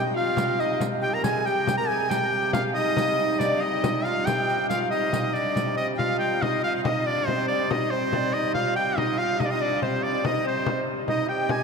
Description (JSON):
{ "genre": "medieval dance", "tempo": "93 BPM (dotted quarters)", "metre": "6/8", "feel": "straight", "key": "C minor", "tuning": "A4 = 442 Hz", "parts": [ { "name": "bright shawm", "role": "melody", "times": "0.0-11.6 s", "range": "C5 to Bb5", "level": "-26 LUFS", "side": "equal", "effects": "none" }, { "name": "breathy bright alto recorder", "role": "second line", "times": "0.0-11.6 s", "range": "C5 to Bb5", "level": "-32 LUFS", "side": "left 3 dB", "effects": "none" }, { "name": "mellow flugelhorn", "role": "second line", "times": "0.0-11.6 s", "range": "C4 to Bb4", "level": "-29 LUFS", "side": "right 3 dB", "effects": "none" }, { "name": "warm hurdy-gurdy", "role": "drone", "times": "0.0-11.6 s", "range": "C3 to G3", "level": "-32 LUFS", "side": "left 2 dB", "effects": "stereo widening" }, { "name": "frame drum", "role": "percussion", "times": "0.2-11.6 s", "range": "none", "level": "-31 LUFS", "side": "left 4 dB", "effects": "none" }, { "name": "riq", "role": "percussion", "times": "0.4-5.8 s", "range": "none", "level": "-35 LUFS", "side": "right 4 dB", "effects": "none" } ], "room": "wet cathedral reverb, RT60 6.2 s", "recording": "in a vast, echoing space", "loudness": "-22 LUFS", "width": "side -5 dB against mid", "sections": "0.0-6.0 A section; 6.0-11.6 B section", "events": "speeding up 0.0-11.6", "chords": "none" }